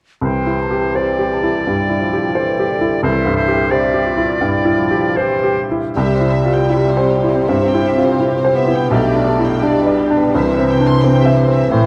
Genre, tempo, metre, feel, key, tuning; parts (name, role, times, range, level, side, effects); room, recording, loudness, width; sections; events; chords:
classical; 83 BPM; 4/4; uneven beats, rubato; C major; A4 = 444 Hz
bright baby grand piano; melody; 0.2-11.9 s; B1 to E5; -19 LUFS; equal
bright oboe; second line; 0.2-5.6 s; C5 to D5; -24 LUFS; equal
mellow clarinet; second line; 0.2-5.6 s; E4 to A4; -27 LUFS; equal
mellow silver concert flute; second line; 0.2-5.6 s; E5 to A5; -28 LUFS; equal
mellow bassoon; accompaniment; 0.2-11.9 s; D3 to C4; -22 LUFS; equal
warm symphonic violin section; second line; 6.0-11.9 s; G4 to C6; -27 LUFS; equal
dark symphonic viola section; accompaniment; 6.0-11.9 s; C4 to A4; -26 LUFS; equal
rich symphonic cello section; bass; 6.0-11.9 s; A2 to C3; -21 LUFS; equal
moderate concert hall reverb, RT60 2.4 s; vinyl crackle; -15 LUFS; mono
0.2-6.0 A section; 6.0-11.9 B section
0.2 C; 8.9 G/B; 10.4 C